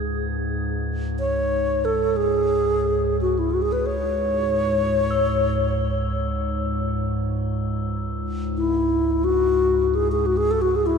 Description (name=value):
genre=world meditative, free-time meditation music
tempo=free time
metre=none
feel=none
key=C# minor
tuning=A4 = 440 Hz
part: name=bass flute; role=melody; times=0.0-11.0 s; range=E4 to C#5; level=-22 LUFS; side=left 1 dB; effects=none
part: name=warbly tape-like pad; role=drone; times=0.0-11.0 s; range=C#2 to G#2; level=-25 LUFS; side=equal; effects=chorus, built-in reverb
part: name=crotales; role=texture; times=0.0-11.0 s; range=E6 to G#6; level=-37 LUFS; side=left 1 dB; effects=stereo widening
room=wet cathedral reverb, RT60 6.3 s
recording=dark, warm production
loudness=-20 LUFS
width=side -6 dB against mid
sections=0.0-11.0 A section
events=none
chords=none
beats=free time